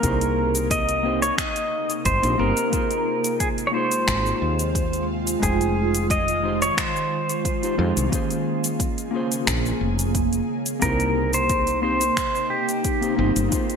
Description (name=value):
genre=sunset chillout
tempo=89 BPM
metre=4/4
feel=straight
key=unclear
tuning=A4 = 440 Hz
part: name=pedal steel guitar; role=melody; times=0.0-13.1 s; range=G4 to Eb5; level=-24 LUFS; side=equal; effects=ping-pong delay
part: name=mellow electric guitar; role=accompaniment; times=0.0-13.8 s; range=Ab3 to G5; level=-27 LUFS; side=left 1 dB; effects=auto-pan, ping-pong delay
part: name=ethereal airy pad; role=sustained chords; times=0.0-13.8 s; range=C3 to Ab4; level=-28 LUFS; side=right 2 dB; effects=ensemble chorus, built-in reverb, phaser
part: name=woody fretless electric bass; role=bass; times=0.0-13.5 s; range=F1 to F2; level=-25 LUFS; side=equal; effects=wide subtle chorus
part: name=electronic kick drum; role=drums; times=0.0-13.7 s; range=none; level=-28 LUFS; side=equal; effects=overdrive
part: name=smooth R&B drum kit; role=drums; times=0.0-13.8 s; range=cabasa, finger snaps, hi-hat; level=-27 LUFS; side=left 1 dB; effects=overdrive, gated reverb
room=moderate lush hall reverb, RT60 2.0 s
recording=bright 1980s-style digital production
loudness=-20 LUFS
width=side -6 dB against mid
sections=0.0-2.7 A section; 2.7-13.8 A section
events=none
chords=0.0 Cm7; 2.7 Ab6; 5.4 Fm7; 8.1 Bbm7; 10.5 Cm7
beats=| 0.04 0.71 1.38 2.06 | 2.73 3.40 4.08 4.75 | 5.43 6.10 6.78 7.45 | 8.12 8.80 9.47 10.15 | 10.82 11.49 12.17 12.84 | 13.52